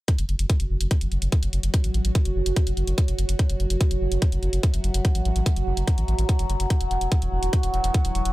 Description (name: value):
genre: psychedelic trance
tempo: 145 BPM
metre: 4/4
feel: straight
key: unclear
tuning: A4 = 440 Hz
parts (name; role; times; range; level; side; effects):
- overtone-sweeping drone; sustained chords; 0.7-8.3 s; F#3 to F#4; -30 LUFS; right 2 dB; chorus, built-in reverb, sidechain pumping
- electronic hi-hat; drums; 0.1-8.3 s; none; -33 LUFS; equal; none
- electronic kick drum; drums; 0.1-8.0 s; none; -20 LUFS; equal; none
- warbly tape-like pad; texture; 0.8-8.3 s; E4 to F#5; -45 LUFS; equal; chorus, built-in reverb, phaser, sidechain pumping
- round analog bass; bass; 0.2-8.3 s; E1 to A1; -24 LUFS; equal; none
room: little or no reverb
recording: none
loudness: -21 LUFS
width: side -17 dB against mid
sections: 0.1-8.3 A section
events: fade-in on ambient pad 0.1-8.3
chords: 0.1 F#5; 6.7 E5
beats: | 0.08 0.50 0.91 1.32 | 1.74 2.15 2.56 2.98 | 3.39 3.81 4.22 4.63 | 5.05 5.46 5.88 6.29 | 6.70 7.12 7.53 7.94